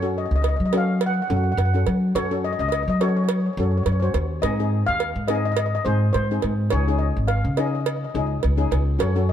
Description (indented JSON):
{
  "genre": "calypso",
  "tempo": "105 BPM",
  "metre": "4/4",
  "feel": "swing 54% on 16ths",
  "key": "Db major",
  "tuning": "A4 = 442 Hz",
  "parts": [
    { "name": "steel pan", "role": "melody", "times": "0.0-9.3 s", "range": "C5 to Gb5", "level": "-27 LUFS", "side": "left 3 dB", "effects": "none" },
    { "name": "steel pan", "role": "accompaniment", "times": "0.0-9.3 s", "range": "C4 to C5", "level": "-28 LUFS", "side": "left 4 dB", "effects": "none" },
    { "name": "upright bass", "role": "bass", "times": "0.0-9.3 s", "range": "Ab1 to Gb3", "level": "-22 LUFS", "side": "equal", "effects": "none" },
    { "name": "cowbell", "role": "percussion", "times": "0.4-9.1 s", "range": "none", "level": "-29 LUFS", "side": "right 9 dB", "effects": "none" }
  ],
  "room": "light reverb",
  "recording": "dark, warm production",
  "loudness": "-20 LUFS",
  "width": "side -10 dB against mid",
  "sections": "0.0-9.3 A section",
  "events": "none",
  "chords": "0.0 Gbm; 4.4 Ab; 6.7 Dbsus2",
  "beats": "0.44 1.01 1.58 | 2.15 2.72 3.29 3.86 | 4.43 5.00 5.57 6.14 | 6.71 7.29 7.86 8.43 | 9.00"
}